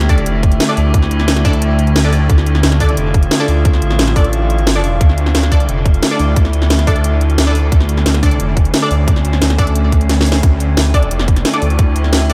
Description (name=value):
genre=dark technical drum and bass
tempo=177 BPM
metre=4/4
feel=straight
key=D harmonic minor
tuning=A4 = 436 Hz
part: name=metallic inharmonic drone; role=sustained chords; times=0.0-12.3 s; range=D3 to F4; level=-21 LUFS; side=equal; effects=chorus, built-in reverb, sidechain pumping
part: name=detuned saw bass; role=bass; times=0.0-12.3 s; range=F1 to D2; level=-17 LUFS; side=equal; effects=chorus, overdrive
part: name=drum and bass drum kit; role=drums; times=0.0-12.3 s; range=hi-hat, snare drum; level=-20 LUFS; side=equal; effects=overdrive
part: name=orchestra-hit-like synth stab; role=stabs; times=0.1-12.3 s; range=D4 to D5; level=-25 LUFS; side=equal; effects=built-in reverb, phaser, tape echo
part: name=electronic kick drum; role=drums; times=0.1-11.9 s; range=none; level=-14 LUFS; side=equal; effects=overdrive
room=light reverb, digital ambience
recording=none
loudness=-13 LUFS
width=mono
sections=0.0-10.4 A section; 10.4-12.3 A section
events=drop 0.0-10.4, 10.4-12.3; drum fill 10.1-10.4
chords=0.0 Dm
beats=0.26 0.60 | 0.94 1.28 1.62 1.96 | 2.30 2.63 2.97 3.31 | 3.65 3.99 4.33 4.67 | 5.01 5.35 5.69 6.03 | 6.36 6.70 7.04 7.38 | 7.72 8.06 8.40 8.74 | 9.08 9.41 9.75 10.09 | 10.43 10.77 11.11 11.45 | 11.79 12.13